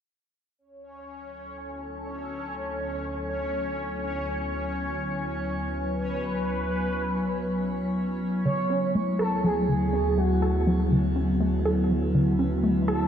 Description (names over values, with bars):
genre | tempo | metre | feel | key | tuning
ambient, sequencer-driven space music | 122 BPM | 4/4 | straight | unclear | A4 = 440 Hz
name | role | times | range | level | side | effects
sweeping resonant pad | sustained chords | 0.6-13.1 s | D2 to B4 | -28 LUFS | equal | chorus, shimmer reverb
bubbling stepped-filter texture | texture | 0.8-8.5 s | C#4 to C#5 | -34 LUFS | left 1 dB | chorus, built-in reverb, shimmer reverb
expressive portamento lead | melody | 8.5-13.1 s | F#4 to C#5 | -30 LUFS | right 3 dB | lush chorus, shimmer reverb, tape echo
resonant blip pluck | riff | 8.5-13.1 s | D3 to A4 | -27 LUFS | equal | phaser, cassette tape, shimmer reverb, tape echo
analog drone | bass | 9.4-13.1 s | D2 | -28 LUFS | equal | chorus
room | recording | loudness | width
wet concert hall reverb, RT60 2.2 s | dark, warm production | -24 LUFS | side -9 dB against mid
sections
0.6-8.5 A section; 8.5-13.1 B section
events
fade-in on analog synth pad 0.6-8.5; filter sweep on synth arpeggio sound 8.5-13.1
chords
0.6 Dmaj7; 8.5 D